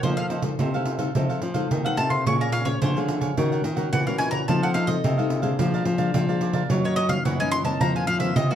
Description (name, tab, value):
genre	samba and choro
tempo	108 BPM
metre	4/4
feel	straight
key	unclear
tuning	A4 = 444 Hz
part	bowl-back mandolin	melody	0.0-8.6 s	Gb4 to Db6	-26 LUFS	equal	none
part	cavaquinho	accompaniment	0.0-8.6 s	Eb4 to Ab5	-31 LUFS	right 4 dB	none
part	nylon-string guitar	accompaniment	0.0-8.6 s	F2 to C5	-29 LUFS	left 5 dB	none
part	nylon-string guitar	bass	0.0-8.6 s	Bb2 to Gb3	-26 LUFS	left 1 dB	none
part	pandeiro	percussion	0.0-8.6 s	none	-26 LUFS	right 2 dB	none
room	light reverb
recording	dark, warm production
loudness	-21 LUFS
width	side -10 dB against mid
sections	0.0-8.6 A section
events	mandolin solo 0.0-8.6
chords	0.0 F7; 2.3 Bbm9; 3.4 Ebm7; 4.5 F7; 5.6 Bb7/F; 6.7 Ebm7/Gb; 7.8 F7sus4